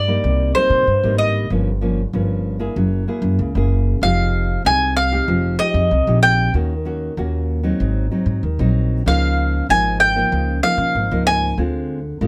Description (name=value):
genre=samba and choro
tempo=95 BPM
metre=4/4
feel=straight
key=unclear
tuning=A4 = 443 Hz
part: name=mandolin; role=melody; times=0.0-11.6 s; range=C5 to Ab5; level=-20 LUFS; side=equal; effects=none
part: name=nylon-string guitar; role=accompaniment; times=0.0-12.3 s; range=G2 to Ab4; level=-25 LUFS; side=equal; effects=none
part: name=upright bass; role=bass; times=0.0-12.3 s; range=F1 to Db3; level=-22 LUFS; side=equal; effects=none
room=moderate small room ambience, RT60 0.5 s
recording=none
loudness=-18 LUFS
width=mono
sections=0.0-12.3 A section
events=mandolin solo 0.0-12.3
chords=0.0 Cm7; 1.5 Gm7b5; 2.8 F#9; 4.0 Fm9; 6.5 Ebm7; 7.8 Ab7; 9.1 Db69; 11.6 Dm7b5